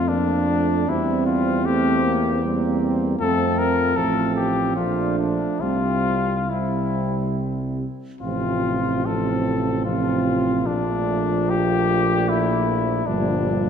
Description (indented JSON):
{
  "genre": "classical, hymn-like piece for brass band",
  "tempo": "67-80 BPM",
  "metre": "3/4",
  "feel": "rubato",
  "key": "F major",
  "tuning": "A4 = 440 Hz",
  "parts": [
    { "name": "mellow cornet", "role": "melody", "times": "0.0-13.7 s", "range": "D4 to Bb4", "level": "-24 LUFS", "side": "left 6 dB", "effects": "none" },
    { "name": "mellow French horn section", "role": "second line", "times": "0.0-13.7 s", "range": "G3 to D4", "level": "-26 LUFS", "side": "right 6 dB", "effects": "none" },
    { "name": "dark euphonium", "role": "accompaniment", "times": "0.0-13.7 s", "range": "F3 to C4", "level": "-27 LUFS", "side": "left 1 dB", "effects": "none" },
    { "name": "warm trombone", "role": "accompaniment", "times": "0.0-13.7 s", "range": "Bb2 to C4", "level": "-28 LUFS", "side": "right 4 dB", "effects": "none" },
    { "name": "warm tuba", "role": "bass", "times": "0.0-13.7 s", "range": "G1 to F2", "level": "-26 LUFS", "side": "equal", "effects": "none" }
  ],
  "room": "wet concert hall reverb, RT60 2.5 s",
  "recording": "none",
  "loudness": "-19 LUFS",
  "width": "side -7 dB against mid",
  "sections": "0.0-13.7 A section",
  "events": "none",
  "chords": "0.0 F; 0.9 C7/E; 3.2 F; 4.8 Bbmaj7; 5.6 C; 8.2 F/A; 10.6 Bbmaj7; 13.1 Gm7",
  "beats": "0.10 | 0.89 1.67 2.44 | 3.21 3.98 4.77 | 5.61 6.49 7.36 | 8.21 9.05 9.84 | 10.64 11.49 12.28 | 13.05"
}